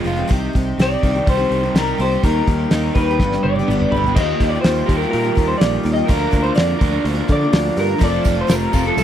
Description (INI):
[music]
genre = folk rock and heartland rock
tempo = 125 BPM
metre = 4/4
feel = straight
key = unclear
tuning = A4 = 439 Hz
[part]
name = electric guitar through a small old amp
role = melody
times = 0.0-9.0 s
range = A4 to Eb5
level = -21 LUFS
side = left 1 dB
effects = lush chorus
[part]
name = picked steel-string acoustic guitar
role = accompaniment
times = 0.0-9.0 s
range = F2 to Bb4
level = -24 LUFS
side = left 3 dB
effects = none
[part]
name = crunchy overdriven guitar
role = riff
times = 0.0-9.0 s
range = G2 to Bb4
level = -23 LUFS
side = right 2 dB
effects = none
[part]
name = picked electric bass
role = bass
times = 0.1-9.0 s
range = F1 to D3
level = -22 LUFS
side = equal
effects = none
[part]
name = cloth-damped thuddy drum kit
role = drums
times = 0.1-9.0 s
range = crash cymbal, hi-hat, kick drum, snare drum, toms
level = -18 LUFS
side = equal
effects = none
[part]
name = tonewheel organ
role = sustained chords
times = 3.9-9.0 s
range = A3 to A5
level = -33 LUFS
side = right 1 dB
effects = none
[part]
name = overdriven reed electric piano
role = accompaniment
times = 4.2-9.0 s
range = C4 to C5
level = -31 LUFS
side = right 8 dB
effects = none
[part]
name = tambourine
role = percussion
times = 8.0-9.0 s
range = none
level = -36 LUFS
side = right 11 dB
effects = none
[sound]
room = studio ambience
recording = dry, close 1970s-style studio recording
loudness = -15 LUFS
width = side -10 dB against mid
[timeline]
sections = 0.0-4.2 A section; 4.2-9.0 B section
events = drum fill 3.2-4.2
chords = 0.3 Cm; 2.2 Eb; 3.2 G; 4.2 Ebadd9; 6.1 Bb/D; 8.0 F